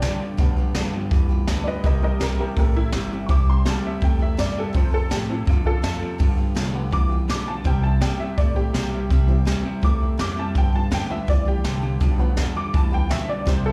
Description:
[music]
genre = rockabilly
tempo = 165 BPM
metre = 4/4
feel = straight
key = C major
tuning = A4 = 443 Hz
[part]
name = honky-tonk upright piano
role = accompaniment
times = 0.0-13.7 s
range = E3 to D6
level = -31 LUFS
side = equal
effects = none
[part]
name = picked steel-string acoustic guitar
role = accompaniment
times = 0.0-13.7 s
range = G2 to A4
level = -36 LUFS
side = equal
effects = none
[part]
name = electric guitar through a small old amp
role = riff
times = 0.0-13.7 s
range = F2 to A3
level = -31 LUFS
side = equal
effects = slapback echo
[part]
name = upright bass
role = bass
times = 0.0-13.7 s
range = G1 to D3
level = -28 LUFS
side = equal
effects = none
[part]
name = jazz brush drum kit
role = drums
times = 0.0-13.6 s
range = hi-hat, kick drum, snare drum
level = -24 LUFS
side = equal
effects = none
[sound]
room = studio ambience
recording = live gig heard through the venue's PA, club reverb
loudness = -22 LUFS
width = mono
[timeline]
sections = 0.0-3.3 A section; 3.3-13.7 A section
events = honky-tonk piano solo 0.0-13.7; drum fill 13.5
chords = 0.0 G7; 1.8 C; 4.7 F; 6.2 G7; 7.7 C; 10.6 G7

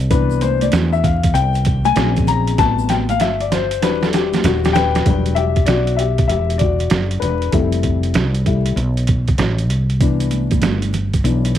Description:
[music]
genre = hip hop, jazz-hop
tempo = 97 BPM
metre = 4/4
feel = swing 65% on 16ths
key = unclear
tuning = A4 = 439 Hz
[part]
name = woody fretless electric bass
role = bass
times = 0.0-11.6 s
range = D#1 to E2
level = -18 LUFS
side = equal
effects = none
[part]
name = trip hop sampler-style drum kit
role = drums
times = 0.0-11.6 s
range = hi-hat, kick drum, snare drum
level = -19 LUFS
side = right 2 dB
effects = none
[part]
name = tube shaker and congas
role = percussion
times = 0.0-5.1, 10.0-11.6 s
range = none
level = -27 LUFS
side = right 8 dB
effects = none
[part]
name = dark grand piano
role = accompaniment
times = 0.1-11.5 s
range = C3 to A#5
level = -19 LUFS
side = left 9 dB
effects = none
[sound]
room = little or no reverb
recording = 1960s-style stereo with parts hard left and right, vinyl crackle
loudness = -14 LUFS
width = side -11 dB against mid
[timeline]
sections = 0.0-5.1 A section; 5.1-11.6 B section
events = grand piano solo 0.0-5.1, 5.1-11.6; drum fill 2.6-5.1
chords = 0.0 Cmaj9; 2.0 A#m9; 2.6 Am9; 3.8 Em7; 5.1 Em9; 7.5 Fmaj9; 9.7 Cmaj9

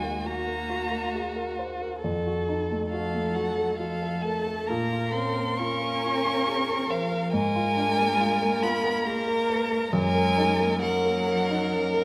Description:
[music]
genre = classical, slow romantic movement for piano quartet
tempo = 68 BPM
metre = 3/4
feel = rubato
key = Bb minor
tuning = A4 = 436 Hz
[part]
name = rich violin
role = melody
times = 0.0-12.0 s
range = F5 to Db6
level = -32 LUFS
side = equal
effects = none
[part]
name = dark cello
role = second line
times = 0.0-12.0 s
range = F3 to Db4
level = -35 LUFS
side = equal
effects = none
[part]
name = warm violin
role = second line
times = 0.0-12.0 s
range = Gb4 to Bb4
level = -32 LUFS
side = equal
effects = none
[part]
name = warm concert grand piano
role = accompaniment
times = 0.0-12.0 s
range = Eb2 to C5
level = -31 LUFS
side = equal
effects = none
[sound]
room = wet concert hall reverb, RT60 2.0 s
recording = none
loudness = -26 LUFS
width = mono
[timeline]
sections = 0.0-12.0 A section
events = none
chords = 0.0 Ebm; 2.0 F7b9; 4.7 Bbm; 7.3 Bb7/Ab; 9.9 Ebm/Gb

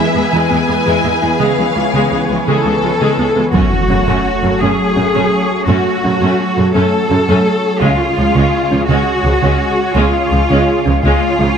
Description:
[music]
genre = cinematic, hybrid orchestral and electronic film score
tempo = 56 BPM (dotted quarters)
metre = 6/8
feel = straight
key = F# harmonic minor from 3.5 s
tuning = A4 = 440 Hz
[part]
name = rich symphonic violin section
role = melody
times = 0.0-2.5 s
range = E5 to G#5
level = -20 LUFS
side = left 4 dB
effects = none
[part]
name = warm symphonic violin section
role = second line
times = 0.0-3.3 s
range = G#4 to B4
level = -20 LUFS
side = left 3 dB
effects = none
[part]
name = rich symphonic viola section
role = accompaniment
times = 0.0-11.5 s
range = C#3 to G#4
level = -19 LUFS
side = right 1 dB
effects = none
[part]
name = analog string pad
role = sustained chords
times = 0.0-11.6 s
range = E3 to G#5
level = -19 LUFS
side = equal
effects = ensemble chorus
[part]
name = thumb-piano-like synth pluck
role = arpeggios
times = 0.0-11.5 s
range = C#3 to F#4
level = -20 LUFS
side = right 2 dB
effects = chorus, digital delay
[part]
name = rich symphonic cello section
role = bass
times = 0.0-11.6 s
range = C#2 to A4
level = -16 LUFS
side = left 1 dB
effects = none
[part]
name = clear symphonic double bass section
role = bass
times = 3.5-11.5 s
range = C#2 to F#2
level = -17 LUFS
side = right 2 dB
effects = none
[part]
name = impact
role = sound effects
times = 3.5-5.7 s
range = none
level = -19 LUFS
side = equal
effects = none
[sound]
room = moderate scoring stage reverb, RT60 1.5 s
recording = none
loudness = -11 LUFS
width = side -7 dB against mid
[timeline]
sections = 0.0-3.5 A section; 3.5-11.6 B section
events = impact 3.5-5.7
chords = 0.0 E; 1.4 C#7; 3.5 F#m; 7.8 C#

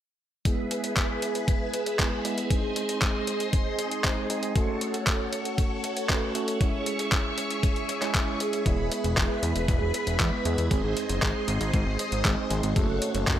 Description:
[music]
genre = italo disco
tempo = 117 BPM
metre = 4/4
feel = straight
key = E major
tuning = A4 = 441 Hz
[part]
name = string machine, full ensemble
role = sustained chords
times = 0.5-13.4 s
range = G#4 to C#6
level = -30 LUFS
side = equal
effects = phaser, ensemble chorus, vintage 12-bit sampler grit
[part]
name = bell-like tine electric piano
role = stabs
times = 0.5-13.4 s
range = G#3 to B#4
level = -32 LUFS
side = right 2 dB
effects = medium stereo tremolo, low-pass filter, tape echo
[part]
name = detuned 8-bit digital drum machine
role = drums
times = 0.5-13.4 s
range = handclaps, hi-hat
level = -30 LUFS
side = equal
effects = overdrive
[part]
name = electronic kick drum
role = drums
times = 0.5-13.4 s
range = none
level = -26 LUFS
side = equal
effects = overdrive
[part]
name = fat analog bass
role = bass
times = 8.7-13.4 s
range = E1 to E2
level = -29 LUFS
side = equal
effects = none
[sound]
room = light reverb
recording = none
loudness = -24 LUFS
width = side -11 dB against mid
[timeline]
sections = 0.5-13.4 A section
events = none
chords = 0.5 E; 2.5 G#; 4.6 F#m; 6.6 C#m; 8.7 E; 10.7 G#; 12.8 F#m

